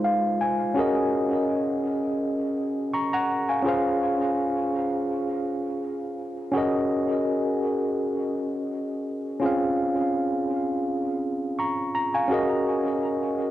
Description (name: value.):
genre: reggae.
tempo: 83 BPM.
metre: 4/4.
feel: swing 54% on 16ths.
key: unclear.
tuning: A4 = 440 Hz.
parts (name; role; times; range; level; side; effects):
tine electric piano; solo; 0.0-13.5 s; Ab3 to Db6; -23 LUFS; equal; fast stereo tremolo, cassette tape, tape echo.
room: wet booth ambience, RT60 0.2 s.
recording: home recording on cassette.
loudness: -23 LUFS.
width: side -14 dB against mid.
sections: 0.8-13.5 A section.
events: tine electric piano fill 0.0-0.8.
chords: 0.0 Fm7; 0.8 Gb69; 3.7 Dbmaj7; 6.5 Gb69; 9.4 Dbmaj7; 12.3 Gb69.